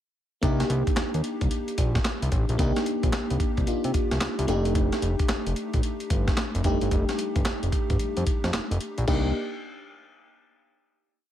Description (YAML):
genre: R&B, new jack swing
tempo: 111 BPM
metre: 4/4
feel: swing 64% on 16ths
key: C dorian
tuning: A4 = 445 Hz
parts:
  - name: FM electric piano with soft pad layer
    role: accompaniment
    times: 0.4-9.3 s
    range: G3 to G4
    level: -28 LUFS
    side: left 1 dB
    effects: chorus
  - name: fat analog bass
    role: bass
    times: 0.4-9.3 s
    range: F1 to C3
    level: -26 LUFS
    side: equal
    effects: none
  - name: breakbeat sampler-style drum kit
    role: drums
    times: 0.4-9.2 s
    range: crash cymbal, handclaps, hi-hat, kick drum, snare drum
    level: -27 LUFS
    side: equal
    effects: none
room: little or no reverb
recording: none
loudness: -23 LUFS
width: side -11 dB against mid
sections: 0.4-9.1 verse; 9.1-11.2 final chord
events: none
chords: 0.4 Cm7; 4.5 F13; 9.1 Cm7